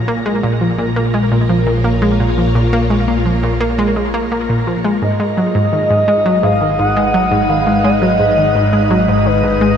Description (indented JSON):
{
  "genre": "ambient",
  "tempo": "85 BPM",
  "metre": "4/4",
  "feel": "straight",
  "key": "G# dorian",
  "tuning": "A4 = 440 Hz",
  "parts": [
    { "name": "phased string machine", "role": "sustained chords", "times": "0.0-9.8 s", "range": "G#3 to A#5", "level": "-20 LUFS", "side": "left 1 dB", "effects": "ensemble chorus, phaser" },
    { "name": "analog drone", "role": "bass", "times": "0.3-9.8 s", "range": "G#1 to A#1", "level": "-19 LUFS", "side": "equal", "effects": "chorus" },
    { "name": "analog pluck", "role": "riff", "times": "0.1-9.7 s", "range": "G#2 to A#3", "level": "-15 LUFS", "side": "equal", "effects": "chorus, tape echo" },
    { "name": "expressive synth lead", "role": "melody", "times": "5.0-9.8 s", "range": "B4 to F#5", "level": "-15 LUFS", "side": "equal", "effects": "wide subtle chorus, tape echo" }
  ],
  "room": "wet shimmer reverb, RT60 8.0 s",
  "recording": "none",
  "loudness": "-12 LUFS",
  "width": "side -8 dB against mid",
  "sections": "0.0-9.8 A section",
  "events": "none",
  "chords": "0.0 A#m7; 5.0 G#madd9",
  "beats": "0.08 0.79 1.50 | 2.20 2.91 3.61 4.32 | 5.02 5.73 6.44 7.14 | 7.85 8.55 9.26"
}